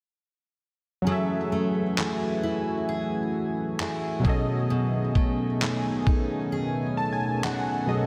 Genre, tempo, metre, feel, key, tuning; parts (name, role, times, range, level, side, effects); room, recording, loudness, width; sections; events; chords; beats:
contemporary R&B; 66 BPM; 4/4; swing 54% on 16ths; A4 = 440 Hz
warm analog keys; accompaniment; 1.0-8.1 s; B2 to A5; -31 LUFS; equal; chorus
chorused pulse-width pad; sustained chords; 1.1-8.1 s; D#3 to G#5; -34 LUFS; equal
picked steel-string acoustic guitar; arpeggios; 1.1-8.1 s; B2 to G#4; -32 LUFS; equal; digital delay
dusty soul sampler-style drum kit; drums; 2.0-7.7 s; handclaps, kick drum; -29 LUFS; equal
light reverb; dense, heavily limited modern master; -27 LUFS; mono
1.1-8.1 A section
kick muted 6.5-8.1; synth keys fill 6.5-8.1
1.1 F#m9; 4.2 B13
| 1.07 1.98 2.89 3.79 | 4.70 5.61 6.52 7.43